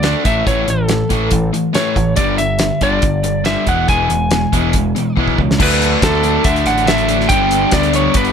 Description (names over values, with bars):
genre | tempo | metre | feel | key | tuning
classic rock | 140 BPM | 4/4 | straight | unclear | A4 = 441 Hz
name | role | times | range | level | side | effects
lightly driven lead guitar | melody | 0.0-8.3 s | A4 to G#5 | -18 LUFS | right 1 dB | none
cranked stack guitar | riff | 0.0-8.3 s | G2 to D4 | -20 LUFS | right 8 dB | overdrive
crunchy overdriven guitar | riff | 0.0-8.3 s | E2 to D4 | -19 LUFS | left 9 dB | none
growling picked electric bass | bass | 0.0-8.3 s | E1 to D2 | -20 LUFS | right 1 dB | overdrive
damped 70s drum kit | drums | 0.0-8.3 s | crash cymbal, hi-hat, kick drum, snare drum | -18 LUFS | equal | none
crunchy overdriven guitar | riff | 5.6-8.3 s | G2 to D4 | -21 LUFS | right 1 dB | none
room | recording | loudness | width
little or no reverb | none | -12 LUFS | side -7 dB against mid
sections
0.0-5.6 A section; 5.6-8.3 B section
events
drum fill 5.2-5.6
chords
0.3 A; 2.2 G5; 3.7 E; 5.6 Dadd9; 7.3 G